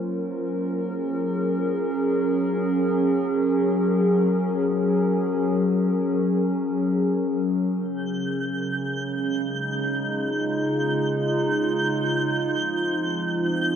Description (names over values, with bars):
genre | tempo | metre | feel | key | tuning
ambient | free time | none | none | unclear | A4 = 437 Hz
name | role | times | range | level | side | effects
warbly tape-like pad | sustained chords | 0.0-13.8 s | Db3 to C5 | -22 LUFS | equal | chorus, built-in reverb
twinkling granular texture | texture | 8.0-13.8 s | G6 | -29 LUFS | right 2 dB | built-in reverb
room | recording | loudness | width
wet huge ambient reverb, RT60 7.6 s | worn, warbling old tape, cassette tape, warbly pitch drift | -21 LUFS | side -8 dB against mid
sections
0.0-7.8 A section; 7.8-13.8 B section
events
none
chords
0.0 Gb; 7.8 Db; 12.3 Fm7